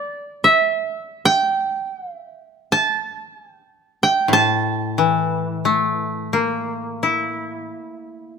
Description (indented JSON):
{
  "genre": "japanese traditional, Japanese chamber music",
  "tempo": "free time",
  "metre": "none",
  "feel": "none",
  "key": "A in sen",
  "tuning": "A4 = 436 Hz",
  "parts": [
    { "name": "koto", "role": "melody", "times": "0.0-7.8 s", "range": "D5 to A5", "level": "-17 LUFS", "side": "right 3 dB", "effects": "none" },
    { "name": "koto", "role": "accompaniment", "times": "4.3-8.4 s", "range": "A2 to E4", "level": "-20 LUFS", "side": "left 4 dB", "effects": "none" }
  ],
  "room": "light reverb",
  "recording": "close, detailed microphones",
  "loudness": "-17 LUFS",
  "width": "side -6 dB against mid",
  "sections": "0.0-8.4 A section",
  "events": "none",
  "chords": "none"
}